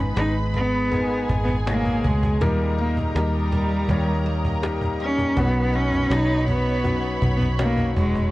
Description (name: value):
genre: pop ballad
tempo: 81 BPM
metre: 4/4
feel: straight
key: B major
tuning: A4 = 443 Hz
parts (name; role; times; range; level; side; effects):
- warm studio violin section; second line; 0.0-8.3 s; G#4 to B5; -32 LUFS; right 1 dB; none
- clear concert grand piano; accompaniment; 0.0-8.3 s; G#2 to C#5; -28 LUFS; left 3 dB; none
- ethereal airy pad; sustained chords; 0.1-8.3 s; G#4 to D#6; -36 LUFS; left 1 dB; ensemble chorus, built-in reverb
- picked steel-string acoustic guitar; arpeggios; 0.0-8.3 s; G#2 to G#4; -35 LUFS; right 4 dB; none
- vintage muted fingered electric bass; bass; 0.0-8.3 s; E1 to D#2; -24 LUFS; equal; none
- rich cello; melody; 0.2-8.3 s; G3 to D#4; -24 LUFS; equal; none
- cajon; drums; 0.2-8.3 s; none; -28 LUFS; equal; none
room: small room ambience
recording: worn, warbling old tape, cassette tape, warbly pitch drift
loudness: -19 LUFS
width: side -18 dB against mid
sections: 0.0-8.3 A section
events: none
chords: 0.0 G#m; 2.4 D#; 5.4 Badd9